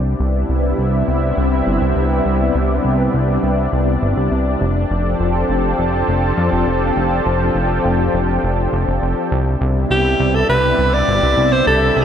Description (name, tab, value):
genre	synthwave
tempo	102 BPM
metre	4/4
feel	straight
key	C major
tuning	A4 = 440 Hz
part	analog string pad	sustained chords	0.0-12.0 s	B2 to A4	-18 LUFS	left 1 dB	ensemble chorus
part	fat analog bass	bass	0.0-12.0 s	F1 to F2	-18 LUFS	equal	none
part	clear alto saxophone	melody	9.9-12.0 s	G4 to D5	-15 LUFS	equal	digital delay
room	moderate plate reverb, RT60 2.7 s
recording	bright 1980s-style digital production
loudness	-14 LUFS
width	side -8 dB against mid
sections	0.0-12.0 A section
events	none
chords	0.0 Cmaj7; 4.6 F6; 9.3 Cmaj7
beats	0.49 1.08 1.67 | 2.26 2.85 3.44 4.02 | 4.61 5.20 5.79 6.38 | 6.96 7.55 8.14 8.73 | 9.32 9.90 10.49 11.08 | 11.67